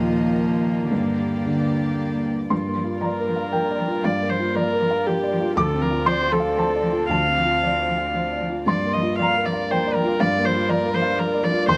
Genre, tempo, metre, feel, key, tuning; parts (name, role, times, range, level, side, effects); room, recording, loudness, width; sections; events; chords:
neoclassical piano and strings; 109-123 BPM; 3/4; rubato; G minor; A4 = 440 Hz
warm cello; second line; 0.0-11.7 s; D3 to F3; -30 LUFS; equal
felt-muted upright piano; accompaniment; 0.0-11.8 s; D2 to D6; -25 LUFS; equal
warm viola; accompaniment; 0.0-11.8 s; Bb3 to F5; -26 LUFS; equal
warm chamber string section; sustained chords; 0.0-11.8 s; Bb3 to Eb5; -36 LUFS; equal
little or no reverb; close, detailed microphones; -22 LUFS; mono
0.0-2.5 A section; 2.5-11.8 B section
0.0 Ebsus2; 0.9 Gm; 2.5 Gm7; 5.6 Dm7; 8.7 Gm7